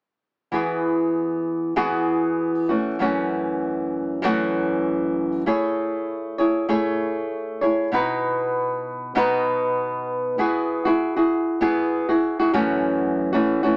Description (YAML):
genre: pop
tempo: 97 BPM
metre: 4/4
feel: swing 55% on 16ths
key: E major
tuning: A4 = 444 Hz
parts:
  - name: flamenco guitar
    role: accompaniment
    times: 0.5-13.8 s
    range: F#2 to C#5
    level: -23 LUFS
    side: equal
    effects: none
room: moderate booth ambience, RT60 0.2 s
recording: small speaker sound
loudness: -23 LUFS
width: mono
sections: 0.5-10.4 A section; 10.4-13.8 B section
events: none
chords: 0.5 Eadd9; 2.7 F#m7; 5.5 Amaj7; 7.9 B; 10.4 Eadd9; 12.5 F#m7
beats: | 0.53 1.15 1.77 2.38 | 3.00 3.62 4.23 4.85 | 5.46 6.08 6.70 7.31 | 7.93 8.55 9.16 9.78 | 10.39 11.01 11.62 12.24 | 12.85 13.47